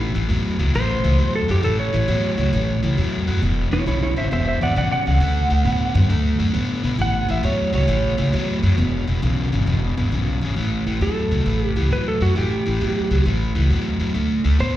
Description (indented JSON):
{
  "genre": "electric blues shuffle",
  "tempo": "134 BPM",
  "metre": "4/4",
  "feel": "swing 67% on 8ths",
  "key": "A mixolydian",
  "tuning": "A4 = 440 Hz",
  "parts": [
    { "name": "overdriven semi-hollow guitar", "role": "riff", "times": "0.0-14.8 s", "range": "E2 to B3", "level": "-23 LUFS", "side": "left 2 dB", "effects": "slapback echo" },
    { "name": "upright bass", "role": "bass", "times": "0.0-14.8 s", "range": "E1 to B2", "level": "-20 LUFS", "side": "equal", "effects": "none" },
    { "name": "clean lap steel guitar", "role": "melody", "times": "0.8-14.7 s", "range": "E4 to F#5", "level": "-24 LUFS", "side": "right 2 dB", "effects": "slapback echo" }
  ],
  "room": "light reverb",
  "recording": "live gig heard through the venue's PA, recital hall reverb",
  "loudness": "-18 LUFS",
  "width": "side -13 dB against mid",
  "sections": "0.0-10.6 A section; 10.6-14.8 A section",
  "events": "electric slide guitar solo 0.0-10.6, 10.6-14.8",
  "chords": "0.0 A; 3.4 E7; 5.2 D; 7.0 A; 8.8 E; 10.6 A7; 14.1 D7(no3)"
}